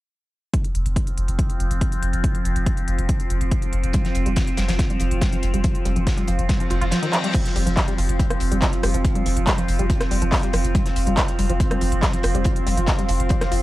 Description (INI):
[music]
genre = driving peak-time techno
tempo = 141 BPM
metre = 4/4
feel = straight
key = unclear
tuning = A4 = 441 Hz
[part]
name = overtone-sweeping drone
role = drone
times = 1.1-13.6 s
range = F3 to C4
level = -29 LUFS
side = right 1 dB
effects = chorus, built-in reverb, phaser, sidechain pumping
[part]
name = electronic kick drum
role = drums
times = 0.5-13.4 s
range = none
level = -22 LUFS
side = equal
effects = overdrive, studio reverb
[part]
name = techno drum kit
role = drums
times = 0.5-13.6 s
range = crash cymbal, handclaps, hi-hat, rim click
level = -27 LUFS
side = equal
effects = overdrive, sidechain pumping on hats, studio reverb, sidechain pumping on cymbals
[part]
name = warbly tape-like pad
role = texture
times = 0.9-13.6 s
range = C4 to C6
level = -31 LUFS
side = right 1 dB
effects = chorus, built-in reverb, sidechain pumping
[part]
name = saturated sub bass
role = bass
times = 0.7-13.6 s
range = F1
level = -22 LUFS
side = equal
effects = overdrive, sidechain pumping, low-pass filter
[part]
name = tight sequenced synth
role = riff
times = 3.9-13.6 s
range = Eb3 to F4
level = -28 LUFS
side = equal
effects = chorus, overdrive, sidechain pumping, tape echo
[part]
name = crisp fusion drum kit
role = drums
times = 3.9-13.6 s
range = hi-hat, snare drum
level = -34 LUFS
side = left 1 dB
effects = sidechain pumping on hats, high-pass filter on hats, studio reverb, high-pass filter on snare, high-pass filter on room
[part]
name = reverse cymbal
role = sound effects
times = 6.7-7.3 s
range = none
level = -32 LUFS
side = left 5 dB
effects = none
[sound]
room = little or no reverb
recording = dry, gritty hardware recording, cassette tape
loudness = -19 LUFS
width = side -17 dB against mid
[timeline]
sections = 0.5-7.3 A section; 7.3-13.6 B section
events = reverse cymbal 6.7-7.3; kick drops out 6.9-7.3; drum fill 7.1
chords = 0.5 F5